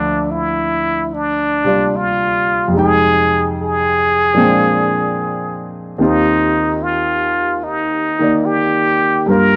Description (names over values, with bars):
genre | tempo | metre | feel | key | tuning
jazz ballad | 73 BPM | 4/4 | swing 69% on 8ths | unclear | A4 = 440 Hz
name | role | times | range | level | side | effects
trumpet with plunger mute | melody | 0.0-9.6 s | D4 to Bb4 | -18 LUFS | equal | none
warm grand piano | accompaniment | 0.0-9.6 s | D2 to G5 | -20 LUFS | equal | none
room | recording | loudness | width
small room ambience | dry, close 1970s-style studio recording | -16 LUFS | mono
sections
0.0-9.6 A section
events
none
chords
0.0 Dm9; 2.7 Fm9; 4.4 Bb13; 6.0 Eb6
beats
0.26 1.09 1.91 | 2.73 3.55 4.36 5.18 | 6.00 6.82 7.64 8.46 | 9.28